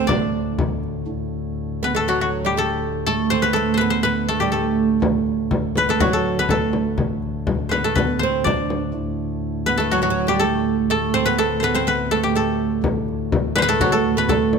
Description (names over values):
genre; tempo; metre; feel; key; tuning
medieval dance; 122 BPM; 2/4; straight; D mixolydian; A4 = 440 Hz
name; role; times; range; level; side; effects
koto; melody; 0.0-14.6 s; F#4 to D5; -21 LUFS; left 3 dB; none
oud; second line; 0.0-14.6 s; F#3 to D4; -22 LUFS; right 7 dB; none
pipe organ, cornet; drone; 0.0-14.6 s; D2 to A2; -26 LUFS; left 2 dB; none
frame drum; percussion; 0.1-1.0, 5.0-8.9, 12.8-14.6 s; none; -23 LUFS; left 3 dB; none
room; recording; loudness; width
moderate recital hall reverb, RT60 1.6 s; close, detailed microphones; -18 LUFS; side -5 dB against mid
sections
0.0-1.1 A section; 1.1-8.9 B section; 8.9-14.6 B section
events
none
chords
none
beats
| 0.09 0.58 | 1.08 1.57 | 2.06 2.56 | 3.05 3.54 | 4.04 4.53 | 5.02 5.51 | 6.00 6.49 | 6.98 7.47 | 7.96 8.45 | 8.94 9.43 | 9.91 10.40 | 10.89 11.38 | 11.86 12.35 | 12.84 13.32 | 13.80 14.29